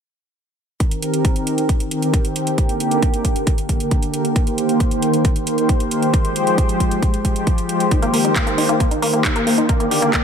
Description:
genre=uplifting trance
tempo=135 BPM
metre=4/4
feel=straight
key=C minor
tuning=A4 = 440 Hz
part: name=lush unison pad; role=sustained chords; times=0.8-10.2 s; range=D3 to D5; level=-19 LUFS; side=equal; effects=chorus, sidechain pumping
part: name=electronic kick drum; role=drums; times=0.8-10.2 s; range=none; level=-18 LUFS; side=equal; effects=none
part: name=house drum kit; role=drums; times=0.8-10.2 s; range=handclaps, hi-hat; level=-25 LUFS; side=right 2 dB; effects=sidechain pumping on hats
part: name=wide unison pluck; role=arpeggios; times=7.9-10.2 s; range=Bb3 to G4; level=-20 LUFS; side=left 2 dB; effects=sidechain pumping, tape echo
room=moderate plate reverb, RT60 1.8 s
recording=dreamy mix soaked in reverb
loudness=-16 LUFS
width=side -7 dB against mid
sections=0.8-10.2 A section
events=filter sweep on analog synth pad 0.8-10.2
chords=0.8 Cm7; 2.6 Gm; 4.4 Cm7; 6.1 Fmadd9; 7.9 Cm7; 9.7 Gm

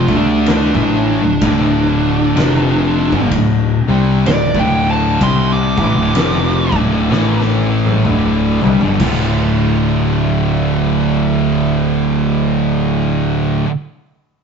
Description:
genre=stoner and doom metal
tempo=63 BPM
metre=4/4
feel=swing 60% on 8ths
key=D minor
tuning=A4 = 440 Hz
part: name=fuzz lead guitar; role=melody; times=0.0-6.8 s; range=D4 to D6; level=-19 LUFS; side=right 1 dB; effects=distortion, tape echo
part: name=thick fuzz guitar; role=riff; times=0.0-13.7 s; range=D2 to D4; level=-16 LUFS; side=left 2 dB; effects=distortion
part: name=thick fuzz guitar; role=riff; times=0.0-13.7 s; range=D2 to D4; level=-21 LUFS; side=right 6 dB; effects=distortion
part: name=tight distorted guitar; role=riff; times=0.0-13.7 s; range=D2 to F4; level=-22 LUFS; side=right 1 dB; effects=distortion
part: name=growling picked electric bass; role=bass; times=0.0-13.6 s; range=D1 to D2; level=-21 LUFS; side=equal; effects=overdrive
part: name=oversized low-tuned drum kit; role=drums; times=0.1-9.3 s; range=crash cymbal, kick drum, ride cymbal, snare drum, toms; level=-20 LUFS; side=equal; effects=none
room=moderate stone room reverb, RT60 1.1 s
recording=rough rehearsal-room recording, nothing above 7.7 kHz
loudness=-12 LUFS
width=side -6 dB against mid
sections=0.0-9.0 A section; 9.0-12.8 B section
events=lead electric guitar solo 0.0-9.0; drum fill 7.1-9.0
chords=0.0 Dm; 7.1 A5; 8.1 D5; 9.0 Dm

